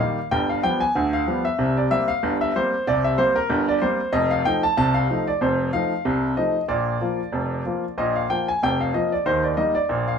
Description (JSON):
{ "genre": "ragtime piano", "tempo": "94 BPM", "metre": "2/4", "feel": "swing 55% on 16ths", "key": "unclear", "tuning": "A4 = 440 Hz", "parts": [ { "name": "clear grand piano", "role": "solo", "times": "0.0-10.2 s", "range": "F1 to A5", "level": "-20 LUFS", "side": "equal", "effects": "none" } ], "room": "wet small room reverb, RT60 0.5 s", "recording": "band playing live in one room", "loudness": "-20 LUFS", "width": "side -6 dB against mid", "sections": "0.0-10.2 A section", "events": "none", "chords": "0.3 G7; 1.6 C5; 4.1 F7; 6.7 Bb; 9.3 Eb" }